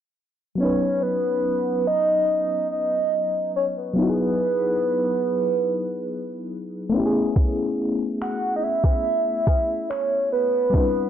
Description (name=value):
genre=contemporary R&B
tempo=71 BPM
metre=4/4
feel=straight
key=B major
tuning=A4 = 440 Hz
part: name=soft octave-layered synth lead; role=melody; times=0.6-11.1 s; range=B4 to F#5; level=-22 LUFS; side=right 1 dB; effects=chorus, phaser, digital delay
part: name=FM electric piano with tremolo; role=accompaniment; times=0.6-11.1 s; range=F#3 to B4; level=-25 LUFS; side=left 2 dB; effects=none
part: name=smooth R&B drum kit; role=drums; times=7.4-10.9 s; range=finger snaps, kick drum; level=-20 LUFS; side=equal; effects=soft clipping on snare
room=light reverb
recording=blown-out, overdriven recording, overdrive, low-pass filter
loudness=-20 LUFS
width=side -9 dB against mid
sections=0.6-11.1 A section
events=filter sweep 0.6-11.1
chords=0.6 Badd9; 4.0 Emaj9; 6.9 Amaj9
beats=| 0.60 1.45 2.29 3.13 | 3.98 4.83 5.67 6.51 | 7.36 8.21 9.05 9.89 | 10.74